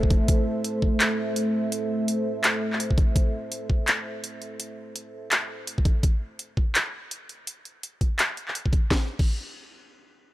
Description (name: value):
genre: half-time drum and bass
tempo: 167 BPM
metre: 4/4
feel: swing 60% on 16ths, half-time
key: A minor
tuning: A4 = 438 Hz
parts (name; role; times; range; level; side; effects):
- dark analog pad; sustained chords; 0.0-6.0 s; A3 to E5; -28 LUFS; right 1 dB; chorus, sidechain pumping
- electronic kick drum; drums; 0.0-9.3 s; none; -21 LUFS; equal; overdrive
- drum and bass drum kit; drums; 0.1-9.3 s; crash cymbal, handclaps, hi-hat, snare drum; -25 LUFS; equal; overdrive
room: light reverb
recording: dry, gritty hardware recording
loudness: -22 LUFS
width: side -16 dB against mid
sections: 0.0-8.9 A section; 8.9-10.3 B section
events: none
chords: 0.0 Am; 8.9 N.C.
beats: | 0.28 0.64 1.00 1.36 | 1.72 2.08 2.44 2.80 | 3.16 3.52 3.88 4.24 | 4.60 4.96 5.31 5.67 | 6.03 6.39 6.75 7.11 | 7.47 7.83 8.19 8.55 | 8.91 9.27